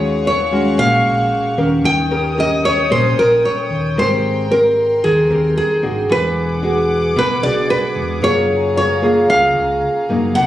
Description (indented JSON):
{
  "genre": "bossa nova",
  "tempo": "113 BPM",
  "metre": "4/4",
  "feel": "straight",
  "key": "unclear",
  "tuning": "A4 = 443 Hz",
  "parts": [
    { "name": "nylon-string guitar", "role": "melody", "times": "0.0-10.5 s", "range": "Ab4 to G5", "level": "-16 LUFS", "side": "equal", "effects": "none" },
    { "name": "nylon-string guitar", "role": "accompaniment", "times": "0.0-10.5 s", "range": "Bb2 to Bb4", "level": "-18 LUFS", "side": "equal", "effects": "none" },
    { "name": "dark studio violin section", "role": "sustained chords", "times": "0.0-10.5 s", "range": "Gb4 to Eb6", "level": "-27 LUFS", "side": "equal", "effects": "none" },
    { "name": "hollow-body short-scale fingered electric bass", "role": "bass", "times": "0.0-10.5 s", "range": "E1 to Eb2", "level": "-23 LUFS", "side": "equal", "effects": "none" }
  ],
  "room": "light reverb",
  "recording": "recorded on a phone in the room, studio reverb, compression",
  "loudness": "-13 LUFS",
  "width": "side -13 dB against mid",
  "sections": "0.0-10.5 A section",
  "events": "none",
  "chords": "0.0 Ebm11; 1.8 Eb7; 4.0 Abmaj9; 6.1 E9; 8.2 Gbmaj9"
}